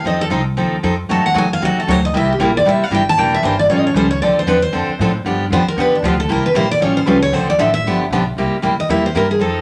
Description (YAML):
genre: acoustic string swing (jazz manouche)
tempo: 231 BPM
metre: 4/4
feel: swing 58% on 8ths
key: C mixolydian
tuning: A4 = 440 Hz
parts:
  - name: picked steel-string acoustic guitar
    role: melody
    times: 0.0-9.6 s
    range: D4 to A5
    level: -19 LUFS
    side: equal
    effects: none
  - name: picked steel-string acoustic guitar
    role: accompaniment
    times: 0.0-9.6 s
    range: C3 to A4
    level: -19 LUFS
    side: equal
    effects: none
  - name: upright bass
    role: bass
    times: 0.0-9.6 s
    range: E1 to A2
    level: -25 LUFS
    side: equal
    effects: none
room: wet studio ambience, RT60 0.5 s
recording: none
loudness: -16 LUFS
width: mono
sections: 0.0-8.4 A section; 8.4-9.6 A section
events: steel-string acoustic guitar solo 0.0-8.4, 8.4-9.6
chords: 0.1 F7; 1.1 F#dim7; 2.1 C7; 3.2 Em7b5; 3.7 Aaug7; 4.2 Dm7; 5.2 G7; 6.3 C7; 6.8 Aaug7; 7.3 Dm7; 7.8 G7; 8.4 C7